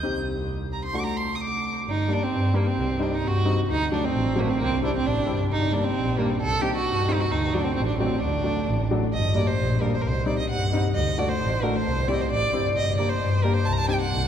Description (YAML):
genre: klezmer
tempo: 132 BPM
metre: 2/4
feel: straight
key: unclear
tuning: A4 = 439 Hz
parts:
  - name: rich violin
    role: melody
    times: 0.0-14.3 s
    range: A3 to G6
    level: -26 LUFS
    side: right 2 dB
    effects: none
  - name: warm upright piano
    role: accompaniment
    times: 0.0-14.0 s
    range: F#3 to G4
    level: -28 LUFS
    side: left 2 dB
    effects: none
  - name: warm double bass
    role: bass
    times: 0.0-14.3 s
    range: G1 to G2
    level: -26 LUFS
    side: equal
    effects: none
room: wet cathedral reverb, RT60 5.8 s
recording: recorded in a church or concert hall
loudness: -22 LUFS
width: side -9 dB against mid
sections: 0.0-1.9 A section; 1.9-9.1 B section; 9.1-14.3 B section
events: none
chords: 0.0 Cm; 0.9 D; 1.9 Gm; 2.8 Cm; 3.7 D; 4.6 C; 5.5 Gm; 6.4 Cm; 7.3 D; 9.1 Gm; 10.0 Cm; 11.0 D; 11.9 C; 12.8 Gm; 13.7 Cm